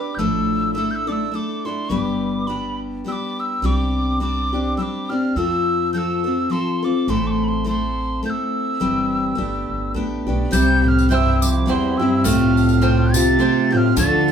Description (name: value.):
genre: acoustic folk duo or small band.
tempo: 104 BPM.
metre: 3/4.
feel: swing 56% on 8ths.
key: C major.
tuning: A4 = 440 Hz.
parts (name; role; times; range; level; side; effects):
breathy mellow tin whistle; melody; 0.0-14.3 s; B5 to A6; -24 LUFS; right 1 dB; none.
picked steel-string acoustic guitar; accompaniment; 0.0-14.3 s; G2 to B4; -20 LUFS; left 2 dB; none.
upright bass; bass; 0.2-14.3 s; G1 to F2; -24 LUFS; equal; none.
warm cello; second line; 10.5-14.3 s; E2 to D3; -20 LUFS; right 4 dB; none.
bowl-back mandolin; arpeggios; 10.5-14.3 s; G3 to G5; -27 LUFS; right 5 dB; none.
tambourine; percussion; 10.5-14.3 s; none; -28 LUFS; left 5 dB; none.
room: wet small room ambience, RT60 0.5 s.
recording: heard from further back in the room.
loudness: -17 LUFS.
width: side -8 dB against mid.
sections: 0.0-10.5 A section; 10.5-14.3 B section.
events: none.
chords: 0.2 Dmadd9/A; 1.9 G; 3.6 Csus2; 5.4 F; 7.1 Am; 8.8 C/G; 9.4 Gadd9; 10.5 C; 12.2 Fadd9/C.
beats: | 0.17 0.75 1.32 | 1.90 2.48 3.05 | 3.63 4.20 4.78 | 5.36 5.93 6.51 | 7.08 7.66 8.23 | 8.81 9.38 9.95 | 10.53 11.10 11.68 | 12.25 12.82 13.40 | 13.97.